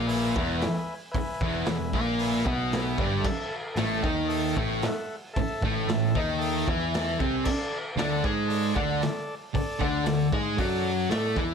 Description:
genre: garage rock duo or trio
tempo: 114 BPM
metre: 4/4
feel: straight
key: unclear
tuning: A4 = 440 Hz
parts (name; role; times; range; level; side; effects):
- thick fuzz guitar; riff; 0.0-11.5 s; E2 to A4; -26 LUFS; equal; distortion
- overdriven picked electric bass; bass; 0.0-11.5 s; E1 to A2; -33 LUFS; equal; none
- combo organ; sustained chords; 0.1-11.4 s; A4 to A5; -36 LUFS; left 1 dB; spring reverb
- raw garage drum kit; drums; 0.1-11.5 s; crash cymbal, hi-hat, kick drum, snare drum; -32 LUFS; equal; none
room: moderate club reverb, RT60 0.6 s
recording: none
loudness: -24 LUFS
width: side -6 dB against mid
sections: 0.0-11.5 A section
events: transistor combo organ fill 6.7-7.4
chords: 0.0 E; 3.3 A5; 7.4 D5

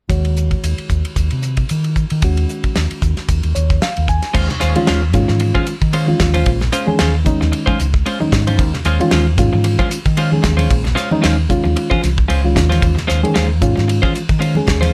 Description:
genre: electric jazz fusion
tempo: 113 BPM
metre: 4/4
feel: swing 56% on 16ths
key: Eb dorian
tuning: A4 = 441 Hz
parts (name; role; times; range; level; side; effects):
- reed electric piano; accompaniment; 0.1-14.9 s; Eb3 to Ab5; -22 LUFS; equal; none
- fingered electric bass; bass; 0.1-14.9 s; Bb1 to Eb3; -19 LUFS; equal; none
- damped 70s drum kit; drums; 0.1-14.9 s; crash cymbal, hi-hat, kick drum, ride cymbal, snare drum; -22 LUFS; equal; none
- clean electric guitar; stabs; 4.3-14.9 s; Ab3 to C5; -24 LUFS; equal; lush chorus
- congas; percussion; 4.5-14.9 s; none; -26 LUFS; equal; none
room: light reverb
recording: none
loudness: -16 LUFS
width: mono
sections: 0.1-4.4 A section; 4.4-14.9 B section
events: reed electric piano fill 3.3-4.4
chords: 0.1 Ebm7; 4.4 Eb13sus4

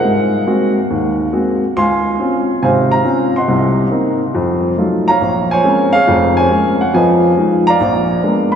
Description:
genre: solo jazz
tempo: 139 BPM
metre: 4/4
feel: swing 68% on 8ths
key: Bb minor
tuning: A4 = 440 Hz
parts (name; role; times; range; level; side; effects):
- warm upright piano; solo; 0.0-8.6 s; F1 to C6; -12 LUFS; equal; none
room: wet cathedral reverb, RT60 5.3 s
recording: in a vast, echoing space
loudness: -12 LUFS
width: side -8 dB against mid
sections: 0.0-8.6 A section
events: none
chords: 0.0 Ab9; 1.8 Dbmaj7; 3.5 Cm7b5; 4.3 F7b9; 5.2 Bbm9; 6.9 Fm7b5; 7.8 Bb7b9

